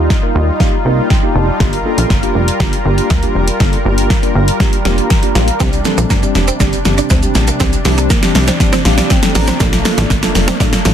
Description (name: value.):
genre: dance-pop.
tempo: 120 BPM.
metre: 4/4.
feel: straight.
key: unclear.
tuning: A4 = 439 Hz.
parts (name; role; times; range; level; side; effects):
mellow tine electric piano; accompaniment; 0.0-10.9 s; G3 to Bb5; -19 LUFS; equal; medium stereo tremolo, sidechain pumping.
lush unison pad; sustained chords; 0.0-10.9 s; C3 to Bb4; -20 LUFS; equal; chorus, sidechain pumping.
plucky analog bass; bass; 0.0-10.9 s; F1 to Eb2; -15 LUFS; equal; sidechain pumping.
deep house drum kit; drums; 0.1-10.9 s; hi-hat, kick drum, shaker, snare drum; -14 LUFS; equal; soft clipping on snare.
direct-recorded clean electric guitar; riff; 5.6-10.9 s; A3 to D4; -21 LUFS; right 6 dB; ensemble chorus.
room: light reverb.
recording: dense, heavily limited modern master.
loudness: -11 LUFS.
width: side -9 dB against mid.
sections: 0.0-10.9 A section.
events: build-up 0.0-10.9; drum fill 0.0-10.9; tine electric piano fill 0.1-1.6, 4.9-5.6, 8.6-9.6.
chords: 0.0 Ebadd9; 1.6 Gm7; 5.6 Bbmaj7.